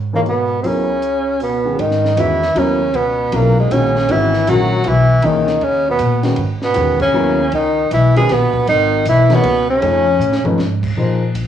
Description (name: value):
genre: modal jazz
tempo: 157 BPM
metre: 3/4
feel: swing 65% on 8ths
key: C# dorian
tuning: A4 = 436 Hz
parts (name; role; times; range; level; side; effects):
- upright bass; bass; 0.0-11.5 s; G#1 to A#2; -19 LUFS; left 1 dB; none
- brilliant trombone; second line; 0.1-10.6 s; G#2 to G#3; -23 LUFS; left 3 dB; cassette tape
- dark upright piano; accompaniment; 0.1-11.2 s; Db3 to Db5; -20 LUFS; left 3 dB; cassette tape
- breathy tenor saxophone; melody; 0.2-10.6 s; G#3 to G#4; -15 LUFS; right 2 dB; none
- compact cocktail drum kit; drums; 0.3-11.5 s; crash cymbal, hi-hat, kick drum, ride cymbal, snare drum, toms; -28 LUFS; equal; cassette tape
room: light reverb, small room reverb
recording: home recording on cassette, studio reverb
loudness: -13 LUFS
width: side -10 dB against mid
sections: 0.0-1.8 A section; 1.8-11.0 B section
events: band accent 7.0; drum fill 10.2-10.6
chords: 0.0 Dbm11; 1.8 C#m9; 9.8 F7alt